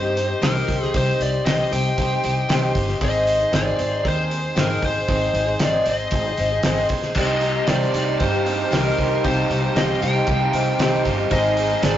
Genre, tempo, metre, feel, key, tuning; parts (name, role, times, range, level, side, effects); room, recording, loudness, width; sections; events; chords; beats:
folk rock and heartland rock; 116 BPM; 4/4; straight; C minor; A4 = 440 Hz
biting lead guitar; melody; 0.0-12.0 s; Bb4 to G5; -24 LUFS; left 2 dB; overdrive
bright upright piano; accompaniment; 0.0-12.0 s; C4 to C5; -31 LUFS; right 3 dB
picked acoustic archtop guitar; accompaniment; 0.0-12.0 s; Ab2 to Ab4; -25 LUFS; left 2 dB
bright tonewheel organ; sustained chords; 0.0-12.0 s; Eb4 to C6; -31 LUFS; right 1 dB; overdrive, slow rotary speaker
upright bass; bass; 0.0-12.0 s; G1 to G2; -25 LUFS; equal
cloth-damped thuddy drum kit; drums; 0.2-12.0 s; crash cymbal, hi-hat, kick drum, snare drum; -25 LUFS; equal
crunchy overdriven guitar; riff; 7.2-12.0 s; Ab2 to Ab4; -23 LUFS; right 3 dB; spring reverb
moderate stone room reverb, RT60 1.0 s; rough rehearsal-room recording, tube saturation, nothing above 7.6 kHz; -18 LUFS; side -11 dB against mid
0.0-12.0 A section
0.0 Cm; 3.0 Ab; 7.2 Cm; 11.3 Ab
0.42 | 0.94 1.46 1.98 2.50 | 3.01 3.53 4.05 4.57 | 5.09 5.61 6.13 6.64 | 7.16 7.68 8.20 8.72 | 9.24 9.76 10.28 10.79 | 11.31 11.83